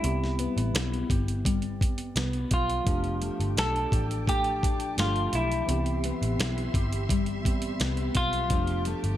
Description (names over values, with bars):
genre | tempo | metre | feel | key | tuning
indie pop, bedroom pop | 85 BPM | 4/4 | straight | C major | A4 = 442 Hz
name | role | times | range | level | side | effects
semi-hollow electric guitar | melody | 0.0-8.8 s | E4 to A4 | -30 LUFS | equal | lush chorus, ping-pong delay
mellow tine electric piano | accompaniment | 0.0-9.2 s | E3 to G4 | -36 LUFS | right 3 dB | none
nylon-string guitar | accompaniment | 0.0-9.2 s | F3 to G4 | -34 LUFS | left 5 dB | wide subtle chorus, vibrato effect
vintage muted picked electric bass | bass | 0.0-9.2 s | F1 to C2 | -30 LUFS | equal | none
dusty soul sampler-style drum kit | drums | 0.0-9.2 s | hi-hat, kick drum, snare drum | -29 LUFS | equal | none
soft string machine | sustained chords | 2.9-9.2 s | G4 to D6 | -39 LUFS | equal | ensemble chorus
room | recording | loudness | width
light reverb | none | -25 LUFS | side -12 dB against mid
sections
0.0-9.2 A section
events
none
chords
0.0 Cmaj7; 2.9 F69; 5.7 Cmaj7; 8.5 F69